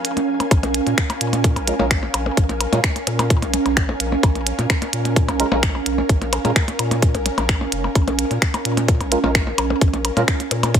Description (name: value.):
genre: minimal techno.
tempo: 129 BPM.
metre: 4/4.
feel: straight.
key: Bb minor.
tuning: A4 = 441 Hz.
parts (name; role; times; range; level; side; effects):
saturated sub bass; bass; 0.0-10.8 s; F1 to Bb2; -24 LUFS; equal; sidechain pumping, high-pass filter.
minimal click drum kit; drums; 0.0-10.8 s; finger snaps, hi-hat; -22 LUFS; right 1 dB; none.
ethereal airy pad; texture; 0.0-10.8 s; Db4 to Ab5; -23 LUFS; right 3 dB; ensemble chorus, built-in reverb, sidechain pumping.
percussion blips; percussion; 0.2-10.7 s; none; -26 LUFS; left 3 dB; digital delay.
electronic kick drum; drums; 0.5-10.8 s; none; -17 LUFS; equal; none.
percussive organ stab; stabs; 1.7-10.2 s; Ab3 to Bb4; -23 LUFS; right 2 dB; ensemble chorus, cassette tape, digital delay.
room: light reverb, digital ambience.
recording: none.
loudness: -17 LUFS.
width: side -8 dB against mid.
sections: 0.5-10.8 A section.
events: drop 0.5-10.8.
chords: 0.0 Bbm7.